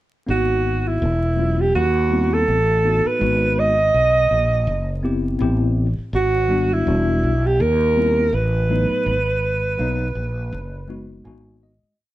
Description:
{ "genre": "hip hop, jazz-hop", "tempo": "82 BPM", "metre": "4/4", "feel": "swing 58% on 16ths", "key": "unclear", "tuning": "A4 = 440 Hz", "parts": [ { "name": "breathy alto saxophone", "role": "melody", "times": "0.3-11.3 s", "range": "E4 to D#5", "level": "-19 LUFS", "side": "right 2 dB", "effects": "none" }, { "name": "mellow tine electric piano", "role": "accompaniment", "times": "0.3-12.0 s", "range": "F#3 to G#5", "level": "-24 LUFS", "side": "left 2 dB", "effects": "medium stereo tremolo" }, { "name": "fretless electric bass", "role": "bass", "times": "0.3-11.9 s", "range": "E1 to D#2", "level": "-21 LUFS", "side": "equal", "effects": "none" } ], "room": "moderate stone room reverb, RT60 1.2 s", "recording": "band playing live in one room, vinyl crackle", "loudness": "-17 LUFS", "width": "side -15 dB against mid", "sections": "0.3-12.0 A section", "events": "fade-out 9.1-12.0; tine electric piano fill 10.9-12.0", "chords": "0.3 G#m9; 1.0 Esus2; 1.7 D#m; 2.5 Asus2; 3.2 G#m9; 4.7 Cmaj7#11/F#; 5.4 Am9; 6.1 G#m7; 6.9 Em9; 7.6 D#5; 8.3 Asus2; 9.1 G#m9; 10.5 F#sus2; 11.3 G#m9", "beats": "| 0.28 1.01 1.75 2.48 | 3.21 3.94 4.67 5.40 | 6.13 6.87 7.60 8.33 | 9.06 9.79 10.53 11.26" }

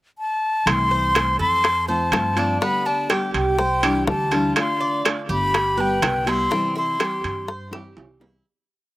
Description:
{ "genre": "latin, Cuban son and guajira", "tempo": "123 BPM", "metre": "4/4", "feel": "straight", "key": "C major", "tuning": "A4 = 435 Hz", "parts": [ { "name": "breathy concert flute", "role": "melody", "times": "0.2-7.7 s", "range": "G5 to C6", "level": "-22 LUFS", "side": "left 1 dB", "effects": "none" }, { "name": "nylon-string guitar", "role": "accompaniment", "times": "0.7-8.4 s", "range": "C3 to G4", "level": "-26 LUFS", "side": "left 1 dB", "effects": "slapback echo" }, { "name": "upright bass", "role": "bass", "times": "0.7-8.4 s", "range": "G1 to G2", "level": "-27 LUFS", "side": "equal", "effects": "none" }, { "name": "bongos", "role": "percussion", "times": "0.7-8.3 s", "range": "none", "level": "-26 LUFS", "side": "left 4 dB", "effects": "slapback echo" }, { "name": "claves", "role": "percussion", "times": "0.7-8.0 s", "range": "none", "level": "-32 LUFS", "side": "left 3 dB", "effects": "none" }, { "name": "timbales", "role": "percussion", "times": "0.7-8.3 s", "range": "none", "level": "-25 LUFS", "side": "right 5 dB", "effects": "none" }, { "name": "Cuban tres", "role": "arpeggios", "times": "0.9-8.4 s", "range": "B3 to D5", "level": "-27 LUFS", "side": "right 3 dB", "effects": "slapback echo" } ], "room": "little or no reverb", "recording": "recorded outdoors, with no room sound", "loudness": "-18 LUFS", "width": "side -17 dB against mid", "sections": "0.0-0.7 pickup bar; 0.7-8.5 A section", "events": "fade-out 6.5-8.5; drum fill 7.7-8.5", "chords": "0.0 N.C.; 0.7 C6; 1.6 F; 2.6 G; 3.6 Cadd9; 4.6 Dm; 5.5 G; 6.5 C", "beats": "0.18 | 0.67 1.15 1.64 2.13 | 2.62 3.10 3.59 4.08 | 4.56 5.05 5.54 6.02 | 6.51 7.00 7.48 7.97" }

